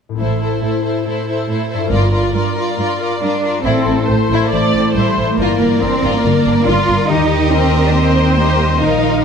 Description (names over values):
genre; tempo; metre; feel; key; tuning
cinematic, heroic adventure film score; 140 BPM; 4/4; straight; unclear; A4 = 441 Hz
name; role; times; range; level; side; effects
concert harp; arpeggios; 0.1-9.2 s; G2 to Bb4; -21 LUFS; left 8 dB; none
warm symphonic violin section; melody; 0.2-9.2 s; C5 to F5; -24 LUFS; left 1 dB; none
warm symphonic violin section; second line; 0.2-9.2 s; C4 to Bb4; -22 LUFS; left 4 dB; none
rich studio viola section; accompaniment; 0.2-9.2 s; E4 to D5; -20 LUFS; equal; none
dark symphonic cello section; bass; 0.2-9.2 s; G2 to F4; -18 LUFS; right 2 dB; none
rich symphonic double bass section; bass; 0.2-9.2 s; G1 to Eb2; -18 LUFS; right 3 dB; none
room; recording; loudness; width
wet scoring stage reverb, RT60 1.6 s; none; -12 LUFS; side -6 dB against mid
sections
0.2-3.7 A section; 3.7-9.2 B section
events
none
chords
0.2 Am; 1.9 Gm7; 3.7 Am; 5.4 Gm7; 7.1 Eb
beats
| 0.21 0.64 1.07 1.50 | 1.93 2.36 2.79 3.22 | 3.66 4.09 4.53 4.96 | 5.39 5.82 6.25 6.67 | 7.10 7.53 7.96 8.38 | 8.81